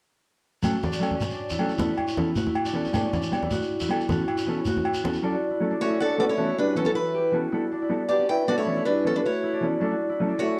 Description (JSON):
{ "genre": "highlife guitar band", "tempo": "105 BPM (dotted quarters)", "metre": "12/8", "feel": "straight", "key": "D major", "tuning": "A4 = 440 Hz", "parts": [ { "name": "mellow electric guitar", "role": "accompaniment", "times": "0.6-10.3 s", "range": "E3 to A4", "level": "-31 LUFS", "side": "equal", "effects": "none" }, { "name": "concert harp", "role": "arpeggios", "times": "0.6-10.6 s", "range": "C#4 to G4", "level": "-30 LUFS", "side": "equal", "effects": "none" }, { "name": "agogo bells", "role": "percussion", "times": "0.6-5.0 s", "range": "none", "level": "-35 LUFS", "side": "equal", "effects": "none" }, { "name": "congas", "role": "percussion", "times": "0.6-5.2 s", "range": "none", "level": "-32 LUFS", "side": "equal", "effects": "none" }, { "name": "shekere", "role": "percussion", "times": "0.6-5.2 s", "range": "none", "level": "-37 LUFS", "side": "equal", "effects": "none" }, { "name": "picked steel-string acoustic guitar", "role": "melody", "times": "5.8-10.6 s", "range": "C#4 to G5", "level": "-27 LUFS", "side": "equal", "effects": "none" }, { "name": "breathy trombone", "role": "second line", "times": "5.8-10.6 s", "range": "E3 to E4", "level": "-32 LUFS", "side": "equal", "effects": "none" } ], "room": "moderate studio reverb, RT60 0.8 s", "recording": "band playing live in one room", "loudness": "-25 LUFS", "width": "mono", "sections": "0.6-5.2 A section; 5.2-10.6 B section", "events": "none", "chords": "0.6 Dmaj7; 1.8 Aadd9; 2.9 Gadd9; 4.1 Aadd9; 5.2 Dmaj7; 6.4 Aadd9; 7.5 Gadd9; 8.7 Aadd9; 9.8 Dmaj7" }